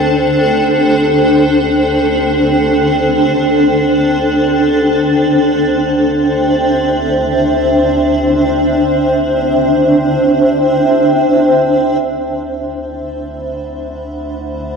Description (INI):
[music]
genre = ambient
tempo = free time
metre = none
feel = none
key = D mixolydian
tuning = A4 = 439 Hz
[part]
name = granular cloud pad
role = sustained chords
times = 0.0-14.8 s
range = D4 to B5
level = -11 LUFS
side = equal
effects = built-in reverb
[part]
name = warm symphonic double bass section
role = bass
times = 0.0-14.8 s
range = D2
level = -27 LUFS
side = equal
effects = none
[sound]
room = wet cathedral reverb, RT60 5.4 s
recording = in a vast, echoing space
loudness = -10 LUFS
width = side -5 dB against mid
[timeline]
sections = 0.0-12.0 A section; 12.0-14.8 B section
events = fade-out on double bass section 0.0-12.0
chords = 0.0 D7sus4; 12.0 D13